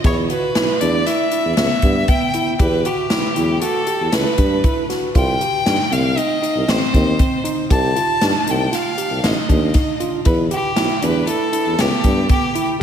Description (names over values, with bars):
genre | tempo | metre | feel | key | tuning
progressive instrumental, band music in an uneven meter | 118 BPM | 5/4 | straight | unclear | A4 = 439 Hz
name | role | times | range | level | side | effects
tine electric piano | arpeggios | 0.0-12.8 s | B3 to G4 | -22 LUFS | right 2 dB | medium stereo tremolo, diffuse ambient delay
warm tuba | bass | 0.0-12.3 s | A1 to G2 | -20 LUFS | equal | none
swinging big-band drum kit | drums | 0.0-12.7 s | hi-hat, kick drum, snare drum | -20 LUFS | equal | none
clear violin | melody | 0.1-12.7 s | G4 to A5 | -20 LUFS | left 1 dB | diffuse ambient delay
room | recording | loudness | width
moderate lush hall reverb, RT60 1.6 s, small room ambience | dreamy mix soaked in reverb | -15 LUFS | side -8 dB against mid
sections
0.0-12.8 A section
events
none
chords
0.1 Em; 5.2 Cm; 10.3 Em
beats
| 0.05 0.56 1.07 1.58 2.09 | 2.60 3.11 3.62 4.13 4.64 | 5.15 5.66 6.17 6.68 7.20 | 7.71 8.22 8.73 9.24 9.75 | 10.26 10.77 11.28 11.79 12.30 | 12.81